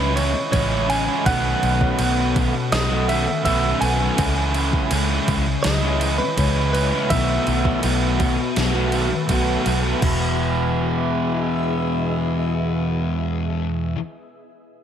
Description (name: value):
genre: rock, shoegaze and dream pop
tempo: 82 BPM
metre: 4/4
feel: straight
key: E major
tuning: A4 = 443 Hz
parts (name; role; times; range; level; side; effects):
- direct-recorded clean electric guitar; melody; 0.0-9.2 s; B4 to G#5; -25 LUFS; right 2 dB; analog delay
- granular cloud pad; sustained chords; 0.0-13.7 s; B3 to B5; -29 LUFS; equal; built-in reverb
- overdriven semi-hollow guitar; riff; 0.0-14.0 s; E2 to F#4; -25 LUFS; right 8 dB; reverse reverb
- thick fuzz guitar; riff; 0.0-14.0 s; E2 to C#4; -24 LUFS; left 9 dB; distortion, lush chorus
- vintage muted fingered electric bass; bass; 0.0-13.9 s; E1 to C#2; -24 LUFS; equal; none
- gated 80s digital drum machine; drums; 0.2-10.2 s; crash cymbal, kick drum, snare drum; -25 LUFS; right 1 dB; gated reverb, gated reverb snare, overdrive
room: light reverb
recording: none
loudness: -18 LUFS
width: side -9 dB against mid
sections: 0.0-10.0 A section; 10.0-12.9 B section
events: none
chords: 0.0 C#m9; 1.3 B5; 4.2 C#m9; 7.1 B7sus4; 10.0 Emaj7